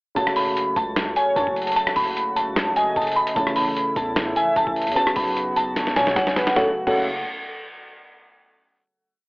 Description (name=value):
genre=hip hop, trap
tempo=150 BPM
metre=4/4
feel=half-time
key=F# minor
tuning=A4 = 445 Hz
part: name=dark grand piano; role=accompaniment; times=0.1-7.1 s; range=C#3 to C#5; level=-29 LUFS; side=equal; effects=none
part: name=soft synth bell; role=melody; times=0.2-7.1 s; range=F#5 to B5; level=-22 LUFS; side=equal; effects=chorus
part: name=warm analog pad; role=sustained chords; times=0.2-6.8 s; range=C#3 to F#4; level=-33 LUFS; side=equal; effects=chorus
part: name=long sustained 808-style bass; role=bass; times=0.2-7.2 s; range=F#1 to B2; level=-36 LUFS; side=equal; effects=none
part: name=lo-fi sampler-style drum kit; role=drums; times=0.2-7.0 s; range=crash cymbal, hi-hat, kick drum, rim click, snare drum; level=-26 LUFS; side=equal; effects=none
part: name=warm velvety synth lead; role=second line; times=1.2-7.1 s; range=A4 to E5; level=-25 LUFS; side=equal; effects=chorus, analog delay
room=light reverb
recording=dry, gritty hardware recording, telephone sound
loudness=-19 LUFS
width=side -36 dB against mid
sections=0.2-6.6 hook; 6.6-8.2 final chord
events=drum fill 5.8-6.6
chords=0.2 F#m; 3.4 A; 5.0 Bsus2; 6.6 F#m